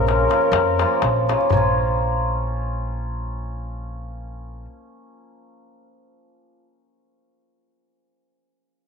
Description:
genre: balkan folk, Balkan wedding band.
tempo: 242 BPM (eighths).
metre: 11/8.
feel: straight.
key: Bb minor.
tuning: A4 = 437 Hz.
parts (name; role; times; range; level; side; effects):
dark flugelhorn; melody; 0.0-1.0 s; Bb4; -26 LUFS; left 1 dB; none.
mellow accordion; second line; 0.0-1.0 s; Bb4; -26 LUFS; left 11 dB; none.
cimbalom; accompaniment; 0.0-6.6 s; Db3 to F4; -22 LUFS; equal; none.
upright bass; bass; 0.0-4.6 s; Bb1 to F2; -25 LUFS; equal; none.
darbuka; percussion; 0.1-1.8 s; none; -26 LUFS; left 6 dB; none.
room: moderate echo chamber reverb, RT60 2.4 s.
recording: 1960s-style stereo.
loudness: -18 LUFS.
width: side -5 dB against mid.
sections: 0.0-1.5 A section; 1.5-4.3 B section.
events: none.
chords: 0.0 Bbm.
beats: 0.04 0.29 0.54 0.79 1.03 1.28 | 1.53 1.78 2.03 2.27 2.52 2.77 3.02 3.27 3.52 3.76 4.01.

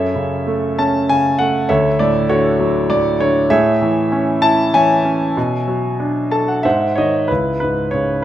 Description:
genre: classical, lyrical solo piano.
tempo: 90-100 BPM.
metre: 3/4.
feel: rubato.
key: F# minor.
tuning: A4 = 440 Hz.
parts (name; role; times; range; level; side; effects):
clear concert grand piano; solo; 0.0-8.2 s; C#2 to A5; -14 LUFS; equal; none.
room: light reverb.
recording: close, detailed microphones.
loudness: -14 LUFS.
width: side -12 dB against mid.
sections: 0.0-7.3 A section.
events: grand piano fill 6.0-7.3.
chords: 0.0 F#m7; 1.7 Dmaj7; 3.5 Amaj7; 5.4 Bm9; 6.6 G#7; 7.3 C#m.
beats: 0.46 1.09 | 1.69 2.30 2.90 | 3.50 4.11 4.74 | 5.36 6.00 6.65 | 7.30 7.93.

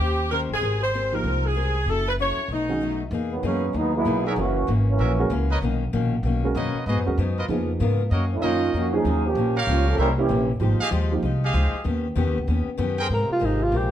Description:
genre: jazz, big band swing.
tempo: 192 BPM.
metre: 4/4.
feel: swing 63% on 8ths.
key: unclear.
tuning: A4 = 440 Hz.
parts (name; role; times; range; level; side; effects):
warm saxophone section; melody; 0.0-3.0 s; D#4 to Db5; -24 LUFS; equal; none.
picked acoustic archtop guitar; accompaniment; 0.0-13.9 s; Gb2 to C5; -29 LUFS; left 5 dB; none.
upright bass; bass; 0.0-13.9 s; Gb1 to Ab2; -24 LUFS; equal; none.
dark grand piano; accompaniment; 1.1-2.8, 5.2-11.2 s; D#3 to Bb4; -28 LUFS; right 3 dB; none.
dark trombone section; second line; 3.3-5.5, 8.3-10.5 s; Eb3 to Bb4; -24 LUFS; right 3 dB; none.
warm trumpet section; stabs; 4.3-13.1 s; Eb4 to G5; -28 LUFS; right 1 dB; none.
breathy alto saxophone; melody; 13.1-13.9 s; Eb4 to Bb4; -23 LUFS; right 1 dB; none.
warm trombone section; sustained chords; 13.1-13.9 s; C3 to G4; -31 LUFS; equal; none.
room: light reverb.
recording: none.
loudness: -21 LUFS.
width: side -11 dB against mid.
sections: 0.0-3.1 A section; 3.1-13.1 B section.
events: trombone section solo 3.1-13.1.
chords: 0.0 Eb6; 0.6 Abmaj9; 1.9 Gbm7; 2.5 B7; 3.1 Emaj9#11; 4.4 Gb7; 5.6 Bmaj9; 6.9 Abm7; 7.5 Db13; 8.1 Gb6; 9.4 Gm7b5; 10.0 C7b9; 10.6 Fm9; 11.9 Eb7alt; 13.1 Abmaj9.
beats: 0.30 | 0.62 0.93 1.24 1.56 | 1.87 2.18 2.50 2.81 | 3.12 3.43 3.75 4.06 | 4.37 4.68 5.00 5.31 | 5.62 5.93 6.24 6.55 | 6.87 7.18 7.49 7.80 | 8.11 8.43 8.74 9.05 | 9.36 9.67 9.98 10.29 | 10.61 10.92 11.23 11.54 | 11.85 12.16 12.47 12.79 | 13.10 13.41 13.72.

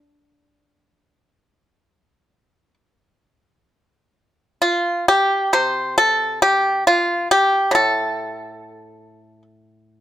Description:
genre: chinese traditional, Chinese solo plucked strings.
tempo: free time.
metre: none.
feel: none.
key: D yu mode.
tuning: A4 = 439 Hz.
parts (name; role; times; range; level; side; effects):
pipa; solo; 0.0-10.0 s; A2 to C5; -16 LUFS; equal; none.
room: light reverb.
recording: close, detailed microphones.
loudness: -15 LUFS.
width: side -12 dB against mid.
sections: 0.0-3.7 A section; 3.7-10.0 B section.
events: none.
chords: none.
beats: free time.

